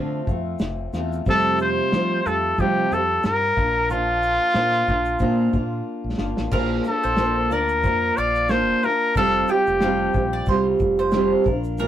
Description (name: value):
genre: acoustic pop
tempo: 91 BPM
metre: 4/4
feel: swing 55% on 16ths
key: unclear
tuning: A4 = 439 Hz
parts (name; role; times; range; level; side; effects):
- fingerpicked steel-string acoustic guitar; accompaniment; 0.0-11.9 s; F2 to Bb4; -23 LUFS; right 1 dB; none
- mellow fretless electric bass; bass; 0.0-11.9 s; F1 to F3; -28 LUFS; equal; none
- cloth-damped thuddy drum kit; drums; 0.3-11.9 s; crash cymbal, kick drum, shaker, snare drum; -26 LUFS; equal; none
- bright trumpet; melody; 1.3-10.5 s; F4 to D5; -20 LUFS; left 1 dB; none
- mandolin; arpeggios; 6.5-11.9 s; Bb4 to G5; -28 LUFS; right 4 dB; none
room: moderate booth ambience, RT60 0.3 s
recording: rough rehearsal-room recording, warm saturation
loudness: -18 LUFS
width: side -11 dB against mid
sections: 0.0-6.5 A section; 6.5-11.9 B section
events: drum fill 5.9-6.5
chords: 0.0 Dm7; 1.3 Fadd9; 3.6 Bb; 9.2 Fsus2